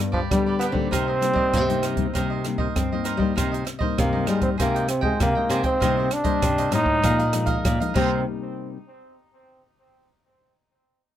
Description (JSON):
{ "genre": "samba and choro", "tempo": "98 BPM", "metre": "4/4", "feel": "straight", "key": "C minor", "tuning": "A4 = 440 Hz", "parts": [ { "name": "nylon-string guitar", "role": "accompaniment", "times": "0.0-8.8 s", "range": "F2 to G4", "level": "-28 LUFS", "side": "left 7 dB", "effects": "none" }, { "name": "nylon-string guitar", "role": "bass", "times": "0.0-8.2 s", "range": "G2 to C4", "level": "-26 LUFS", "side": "left 1 dB", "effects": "none" }, { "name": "bright trombone", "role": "melody", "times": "0.1-8.2 s", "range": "F3 to Eb4", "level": "-24 LUFS", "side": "right 1 dB", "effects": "tape echo" }, { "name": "cavaquinho", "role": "accompaniment", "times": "0.1-8.2 s", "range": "D4 to G5", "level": "-30 LUFS", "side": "right 5 dB", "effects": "none" }, { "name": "open jazz drum kit", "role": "drums", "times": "0.1-8.1 s", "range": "crash cymbal, hi-hat, kick drum, rim click", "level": "-27 LUFS", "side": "right 1 dB", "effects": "none" } ], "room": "light reverb", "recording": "close, detailed microphones", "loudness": "-20 LUFS", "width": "side -11 dB against mid", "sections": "0.0-3.4 A section; 3.4-8.3 B section; 8.3-10.7 C section", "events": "none", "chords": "0.0 G; 0.9 Cm7; 4.6 Abmaj7/C; 5.8 Cm7; 7.0 Bb7sus4; 8.0 Cm7; 8.3 N.C.", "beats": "0.31 | 0.92 1.54 2.15 2.76 | 3.37 3.98 4.60 5.21 | 5.82 6.43 7.04 7.65 | 8.26" }